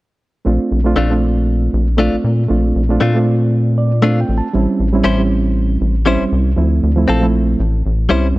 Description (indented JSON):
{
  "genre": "blues",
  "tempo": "118 BPM",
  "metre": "4/4",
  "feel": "swing 55% on 16ths",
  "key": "unclear",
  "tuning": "A4 = 440 Hz",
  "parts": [
    { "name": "reed electric piano", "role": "accompaniment", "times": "0.4-8.4 s", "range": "F3 to A5", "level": "-17 LUFS", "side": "right 3 dB", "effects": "spring reverb" },
    { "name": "rubbery square bass", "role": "bass", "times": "0.5-8.4 s", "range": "A1 to Bb2", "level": "-15 LUFS", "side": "equal", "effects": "none" },
    { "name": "direct-recorded clean electric guitar", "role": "stabs", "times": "1.0-8.3 s", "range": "G3 to B#4", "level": "-18 LUFS", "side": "left 3 dB", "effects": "none" }
  ],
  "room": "digital ambience",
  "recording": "dry, close 1970s-style studio recording",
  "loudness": "-13 LUFS",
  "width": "side -18 dB against mid",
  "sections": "0.5-8.4 A section",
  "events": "reed electric piano fill 3.5-4.5",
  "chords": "0.5 Bbmaj7; 4.5 A7#9; 6.6 Dm7; 7.6 A7#9"
}